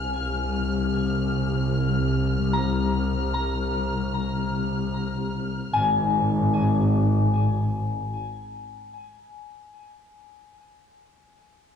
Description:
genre	ambient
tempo	free time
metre	none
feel	none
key	unclear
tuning	A4 = 444 Hz
part	soft synth bell	arpeggios	0.0-11.5 s	Ab5 to Bb5	-30 LUFS	left 4 dB	chorus, tape echo
part	clear chamber double bass section	bass	0.0-8.1 s	Ab1 to C2	-23 LUFS	left 1 dB	none
part	muted studio violin section	texture	0.0-5.7 s	F6	-34 LUFS	left 3 dB	none
room	light reverb, small room ambience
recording	echo-heavy mix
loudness	-22 LUFS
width	side -8 dB against mid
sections	0.0-5.7 A section; 5.7-8.9 B section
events	none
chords	0.0 C7sus4; 5.7 N.C.

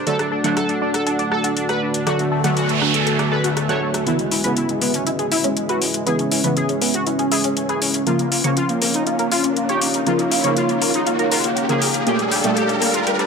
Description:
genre	melodic techno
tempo	120 BPM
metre	4/4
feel	straight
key	C# phrygian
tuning	A4 = 439 Hz
part	resonant sweep polysynth	melody	0.0-13.3 s	G3 to C#5	-23 LUFS	equal	chorus, cassette tape, dub echo
part	dark analog pad	sustained chords	0.0-13.3 s	G#3 to G#5	-26 LUFS	left 2 dB	chorus
part	synth brass stab	stabs	0.0-13.3 s	Bb2 to B3	-26 LUFS	right 2 dB	chorus, digital delay
part	deep dark ambient pad	texture	1.2-13.3 s	D3 to G#5	-26 LUFS	right 1 dB	chorus, built-in reverb
part	tight sequenced synth	arpeggios	0.1-13.3 s	A#3 to F#5	-25 LUFS	equal	chorus, phaser, digital delay
part	deep house drum kit	drums	0.1-13.3 s	hi-hat, rim click	-24 LUFS	left 2 dB	overdrive
part	noise sweep and riser	sound effects	2.3-13.3 s	none	-26 LUFS	right 1 dB	none
room	moderate huge ambient reverb, RT60 5.0 s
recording	high-pass filter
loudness	-17 LUFS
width	side -5 dB against mid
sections	0.0-4.1 A section; 4.1-13.3 B section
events	filter sweep on synth stab 0.0-4.1; noise sweep 2.3-4.1; build-up 4.1-13.3; filter sweep on analog polysynth 4.1-13.3; riser 4.2-13.3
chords	0.1 D; 4.1 C#m7; 8.1 A#m; 12.1 Gmadd9

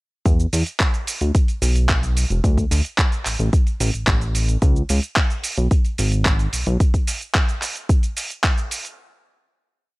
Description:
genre	nu-disco, nu disco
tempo	110 BPM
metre	4/4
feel	straight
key	unclear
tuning	A4 = 440 Hz
part	chorused synth bass	bass	0.3-6.8 s	E1 to E2	-19 LUFS	equal	tube saturation
part	dusty soul sampler-style drum kit	drums	0.3-9.0 s	handclaps, hi-hat, shaker	-23 LUFS	right 1 dB	none
part	electronic kick drum	drums	0.3-8.5 s	none	-18 LUFS	equal	none
room	digital ambience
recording	none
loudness	-17 LUFS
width	side -23 dB against mid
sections	0.3-9.0 drop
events	drop 0.3-9.0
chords	none

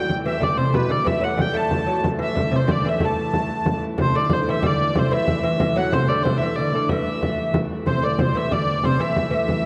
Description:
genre	medieval dance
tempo	124 BPM (dotted quarters)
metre	6/8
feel	straight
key	A dorian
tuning	A4 = 440 Hz
part	dark hurdy-gurdy	melody	0.0-9.7 s	B4 to A5	-26 LUFS	equal	tape echo
part	lute	second line	0.0-9.6 s	B2 to A3	-26 LUFS	equal	none
part	dark hurdy-gurdy	drone	0.0-9.7 s	A2 to E3	-31 LUFS	equal	none
part	frame drum	percussion	0.1-9.6 s	none	-27 LUFS	equal	none
room	wet scoring stage reverb, RT60 2.0 s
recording	dark, warm production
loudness	-21 LUFS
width	mono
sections	0.0-4.0 A section; 4.0-9.7 B section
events	none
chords	none

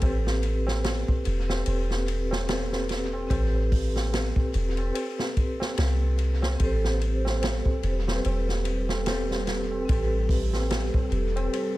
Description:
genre	trip hop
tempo	73 BPM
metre	4/4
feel	swing 58% on 16ths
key	A minor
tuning	A4 = 440 Hz
part	vibraphone with medium mallets	accompaniment	0.0-11.8 s	C4 to C5	-31 LUFS	equal	tremolo, vintage 12-bit sampler grit, tape echo
part	soft 808-style bass	bass	0.0-11.5 s	E1 to C2	-26 LUFS	equal	none
part	swinging big-band drum kit	drums	0.0-11.8 s	hi-hat, kick drum, ride cymbal, snare drum	-29 LUFS	equal	vintage 12-bit sampler grit, tape echo
part	tabla	percussion	0.0-11.7 s	none	-40 LUFS	right 2 dB	none
part	pure breathy sine lead	melody	6.6-11.7 s	A4 to C5	-35 LUFS	right 1 dB	chorus, dub echo
part	dark analog pad	sustained chords	7.2-11.8 s	G3 to A4	-36 LUFS	right 2 dB	chorus
room	light reverb, studio reverb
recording	echo-heavy mix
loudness	-24 LUFS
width	side -17 dB against mid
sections	0.0-11.8 A section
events	none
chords	0.0 Am9

